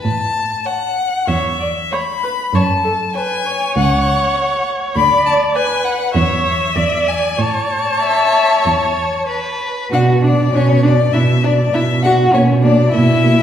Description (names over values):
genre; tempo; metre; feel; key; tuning
quick classical-period movement for string quartet; 98 BPM; 4/4; rubato; A major, B minor from 9.9 s; A4 = 440 Hz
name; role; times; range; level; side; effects
rich violin; melody; 0.0-13.4 s; C#5 to B5; -18 LUFS; left 4 dB; none
rich violin; second line; 0.0-13.4 s; C#4 to E5; -18 LUFS; left 1 dB; none
dark cello; bass; 0.0-13.4 s; C#2 to B2; -17 LUFS; right 2 dB; none
warm viola; accompaniment; 1.3-13.3 s; A#3 to D5; -19 LUFS; right 2 dB; none
room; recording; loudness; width
wet recital hall reverb, RT60 1.4 s; heard from further back in the room, lossy compression artefacts, faint mains hum; -13 LUFS; side -9 dB against mid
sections
0.0-9.9 A section; 9.9-13.4 B section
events
none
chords
0.0 A; 2.5 F#m; 5.0 Bm/D; 6.2 C#m/E; 6.8 E7; 7.4 A; 9.9 Bm; 12.3 Bmadd11